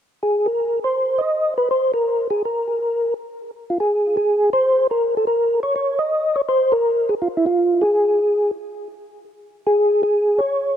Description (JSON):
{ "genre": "jazz", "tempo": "163 BPM", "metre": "4/4", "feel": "swing 64% on 8ths", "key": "unclear", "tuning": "A4 = 440 Hz", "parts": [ { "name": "percussive tonewheel organ", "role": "solo", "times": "0.2-10.8 s", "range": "E4 to Eb5", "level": "-17 LUFS", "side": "equal", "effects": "chorus vibrato, slow rotary speaker, tape echo" } ], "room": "little or no reverb", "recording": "dry, close 1970s-style studio recording", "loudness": "-17 LUFS", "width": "side -9 dB against mid", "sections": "0.6-3.5 A section; 3.5-10.8 B section", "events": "none", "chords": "none", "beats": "0.21 | 0.58 0.95 1.32 1.69 | 2.06 2.43 2.80 3.17 | 3.54 3.90 4.27 4.64 | 5.01 5.38 5.74 6.11 | 6.48 6.84 7.21 7.58 | 7.95 8.31 8.68 9.05 | 9.42 9.79 10.15 10.52" }